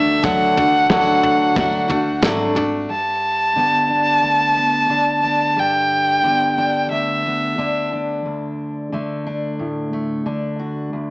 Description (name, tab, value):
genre	indie folk with a building arrangement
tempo	90 BPM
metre	4/4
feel	straight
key	G major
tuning	A4 = 442 Hz
part	rich fiddle	melody	0.0-7.9 s	E5 to A5	-16 LUFS	equal	slapback echo
part	picked steel-string acoustic guitar	accompaniment	0.0-2.9 s	D3 to F#4	-18 LUFS	equal	none
part	upright bass	bass	0.0-2.9 s	Ab1 to D2	-28 LUFS	equal	none
part	soft brush drum kit	drums	0.2-2.7 s	kick drum, snare drum, toms	-22 LUFS	equal	none
part	fingerpicked steel-string acoustic guitar	accompaniment	2.9-11.1 s	D2 to F#4	-22 LUFS	left 1 dB	none
room	light reverb, small room ambience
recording	worn, warbling old tape, cassette tape, warbly pitch drift, small speaker sound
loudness	-16 LUFS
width	side -27 dB against mid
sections	0.0-2.9 A section; 2.9-11.1 B section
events	none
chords	0.0 D; 2.9 G; 8.3 D5